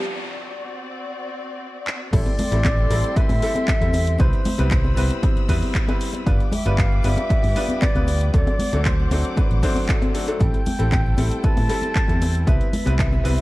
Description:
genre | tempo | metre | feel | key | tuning
nu-disco, nu disco | 116 BPM | 4/4 | straight | A minor | A4 = 439 Hz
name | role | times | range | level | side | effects
bright concert grand piano | accompaniment | 0.0-13.4 s | F#3 to D5 | -27 LUFS | left 1 dB | sidechain pumping
rich symphonic string section | sustained chords | 0.0-13.4 s | C4 to E6 | -35 LUFS | left 3 dB | sidechain pumping
house drum kit | drums | 1.9-13.4 s | crash cymbal, handclaps, hi-hat | -31 LUFS | equal | small room ambience
concert flute | melody | 2.1-13.4 s | C5 to A5 | -28 LUFS | equal | analog delay
fingered electric bass with an envelope filter | bass | 2.1-13.4 s | G1 to A2 | -21 LUFS | equal | tube saturation
electronic kick drum | drums | 2.1-13.1 s | none | -20 LUFS | equal | small room ambience
cabasa and congas | percussion | 2.1-13.4 s | none | -29 LUFS | left 2 dB | none
room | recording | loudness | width
light reverb, small room ambience | dark, warm production | -18 LUFS | side -18 dB against mid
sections
0.0-2.1 A section; 2.1-13.4 B section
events
build-up 0.0-2.1; filter sweep on grand piano 0.0-2.1; break 0.1-2.1; drum fill 1.9; drop 2.1-13.4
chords
0.1 D7; 2.1 Am7; 4.2 Cmaj7; 6.3 G7; 8.3 D7; 10.4 Am7; 12.5 Cmaj7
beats
| 0.06 0.58 1.09 1.61 | 2.13 2.65 3.16 3.68 | 4.20 4.72 5.23 5.75 | 6.27 6.79 7.30 7.82 | 8.34 8.85 9.37 9.89 | 10.41 10.92 11.44 11.96 | 12.47 12.99

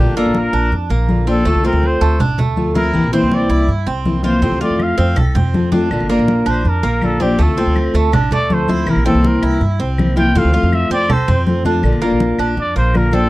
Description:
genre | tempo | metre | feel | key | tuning
latin, Cuban son and guajira | 162 BPM | 4/4 | straight | unclear | A4 = 440 Hz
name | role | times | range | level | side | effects
breathy trumpet | melody | 0.0-13.3 s | G4 to G5 | -20 LUFS | equal | none
fingerpicked steel-string acoustic guitar | accompaniment | 0.0-13.3 s | C3 to F4 | -17 LUFS | left 2 dB | none
Cuban tres | arpeggios | 0.0-13.3 s | A3 to A4 | -22 LUFS | right 4 dB | none
upright bass | bass | 0.0-13.3 s | G1 to G2 | -17 LUFS | equal | none
congas | percussion | 0.2-13.3 s | none | -19 LUFS | equal | none
claves | percussion | 4.8-13.1 s | none | -33 LUFS | left 5 dB | none
room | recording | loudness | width
little or no reverb | dry, close 1970s-style studio recording | -13 LUFS | side -18 dB against mid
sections
0.0-13.3 A section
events
trumpet solo 0.0-13.3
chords
0.0 Bb; 1.5 Dm7; 2.9 C7; 4.4 F; 5.9 Bb; 7.4 Dm7; 8.9 C7; 10.4 F; 11.8 Bb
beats
0.35 0.72 1.09 | 1.46 1.83 2.20 2.57 | 2.94 3.31 3.68 4.05 | 4.42 4.79 5.16 5.54 | 5.91 6.28 6.65 7.02 | 7.39 7.76 8.13 8.50 | 8.87 9.24 9.61 9.98 | 10.35 10.72 11.09 11.46 | 11.83 12.20 12.57 12.94

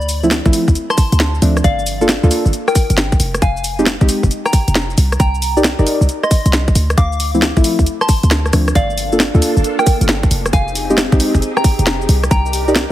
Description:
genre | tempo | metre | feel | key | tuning
UK garage, two-step garage | 135 BPM | 4/4 | swing 66% on 16ths | G minor | A4 = 439 Hz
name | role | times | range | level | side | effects
soft synth bell | melody | 0.0-12.5 s | Bb4 to D6 | -22 LUFS | left 1 dB | chorus, phaser, ping-pong delay
short 808-style bass | bass | 0.0-12.9 s | F1 to D2 | -16 LUFS | equal | none
garage drum kit | drums | 0.0-12.9 s | cabasa, hi-hat, rim click, snare drum | -19 LUFS | equal | none
deep mellow chord stab | stabs | 0.2-12.7 s | F3 to D5 | -17 LUFS | equal | chorus, dub echo
electronic kick drum | drums | 0.5-12.4 s | none | -14 LUFS | equal | none
soft string machine | sustained chords | 9.0-12.9 s | Bb3 to Bb4 | -24 LUFS | right 1 dB | phaser, ensemble chorus, sidechain pumping
room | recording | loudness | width
light reverb, digital ambience | heavily compressed radio sound, multiband compression | -12 LUFS | side -13 dB against mid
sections
0.0-12.9 A section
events
drum fill 8.3-8.8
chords
0.0 Dm9; 1.6 Gm9; 3.2 Fm9; 5.0 Cm9; 6.8 Dm9; 8.8 Gm9; 10.3 Fm9; 12.1 Cm9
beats
0.31 0.75 1.20 | 1.64 2.09 2.53 2.98 | 3.42 3.87 4.31 4.75 | 5.20 5.64 6.09 6.53 | 6.98 7.42 7.87 8.31 | 8.75 9.20 9.64 10.09 | 10.53 10.98 11.42 11.87 | 12.31 12.75

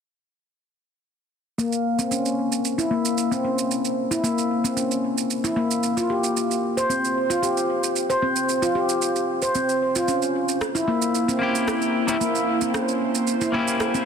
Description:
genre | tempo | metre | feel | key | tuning
organic downtempo | 113 BPM | 4/4 | straight | unclear | A4 = 440 Hz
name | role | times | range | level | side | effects
handpan | arpeggios | 1.6-14.1 s | Bb3 to C5 | -21 LUFS | left 1 dB | low-pass filter, tape echo
electronic shaker and rim click | drums | 1.6-14.0 s | none | -29 LUFS | right 7 dB | overdrive
airy breathy pad | sustained chords | 10.6-14.1 s | Bb3 to C5 | -27 LUFS | right 2 dB | chorus
clean electric guitar | accompaniment | 11.4-14.1 s | Bb3 to G4 | -26 LUFS | left 3 dB | tape echo
room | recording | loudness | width
light reverb, digital ambience | dense, heavily limited modern master | -20 LUFS | side -7 dB against mid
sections
1.6-14.1 A section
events
filter sweep on handpan 1.6-14.1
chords
1.6 N.C.; 5.8 F5/C; 10.1 C7b9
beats
| 1.59 2.12 2.65 3.18 | 3.71 4.25 4.78 5.31 | 5.84 6.37 6.90 7.43 | 7.96 8.49 9.02 9.55 | 10.09 10.62 11.15 11.68 | 12.21 12.74 13.27 13.80

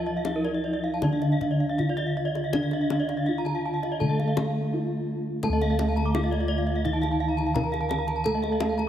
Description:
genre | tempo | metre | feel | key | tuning
Balinese gamelan | 77-85 BPM | 4/4 | straight | D pelog | A4 = 440 Hz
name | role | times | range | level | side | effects
gamelan-type bronze metallophone | melody | 0.0-8.9 s | D4 to Bb4 | -30 LUFS | right 1 dB | none
gamelan-type bronze metallophone | accompaniment | 0.0-8.9 s | D3 to A3 | -31 LUFS | right 2 dB | none
gamelan-type bronze metallophone | arpeggios | 0.0-8.9 s | D5 to Bb5 | -33 LUFS | left 4 dB | diffuse ambient delay
gamelan-type bossed gongs | bass | 0.0-8.9 s | D2 to A4 | -29 LUFS | left 1 dB | none
gamelan-type bronze metallophone | arpeggios | 0.1-8.7 s | Bb4 to D6 | -33 LUFS | right 5 dB | none
kendang | percussion | 0.2-8.9 s | none | -34 LUFS | left 5 dB | none
room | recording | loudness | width
wet plate reverb, RT60 3.3 s | dreamy mix soaked in reverb | -24 LUFS | side -10 dB against mid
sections
0.0-5.4 A section; 5.4-8.9 B section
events
break 4.4-5.4; drum fill 4.9-5.4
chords
none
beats
0.26 1.03 1.79 | 2.54 3.28 4.01 4.73 | 5.44 6.14 6.85 7.55 | 8.26

